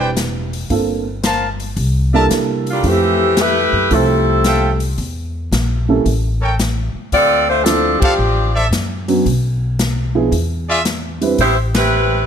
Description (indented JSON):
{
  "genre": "jazz, big band swing",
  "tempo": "112 BPM",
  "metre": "4/4",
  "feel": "swing 68% on 8ths",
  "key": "A minor",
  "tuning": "A4 = 441 Hz",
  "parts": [
    { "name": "dark upright piano", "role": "accompaniment", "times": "0.0-11.4 s", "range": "F3 to B4", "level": "-18 LUFS", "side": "right 4 dB", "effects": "none" },
    { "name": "bright trumpet section", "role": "stabs", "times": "0.0-10.8 s", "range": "F4 to A5", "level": "-20 LUFS", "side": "equal", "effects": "none" },
    { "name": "upright bass", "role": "bass", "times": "0.0-12.2 s", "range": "E1 to C3", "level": "-19 LUFS", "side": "left 1 dB", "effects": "none" },
    { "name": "swinging big-band drum kit", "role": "drums", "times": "0.2-11.8 s", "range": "hi-hat, kick drum, ride cymbal, snare drum", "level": "-22 LUFS", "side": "left 2 dB", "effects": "none" },
    { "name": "bright saxophone section", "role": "melody", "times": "2.7-12.3 s", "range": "E3 to D5", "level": "-15 LUFS", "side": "left 1 dB", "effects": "none" }
  ],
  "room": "moderate large studio reverb, RT60 1.2 s",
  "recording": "none",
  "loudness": "-14 LUFS",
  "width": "side -8 dB against mid",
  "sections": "0.0-12.3 A section",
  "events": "band accent 7.9, 11.7",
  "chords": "0.0 Am11 (rootless); 0.7 Gm11; 1.8 C13; 2.8 Fmaj9; 5.0 Em; 6.1 N.C.; 7.1 Dm7; 9.3 Bm; 10.3 E7(no3); 11.4 Am9"
}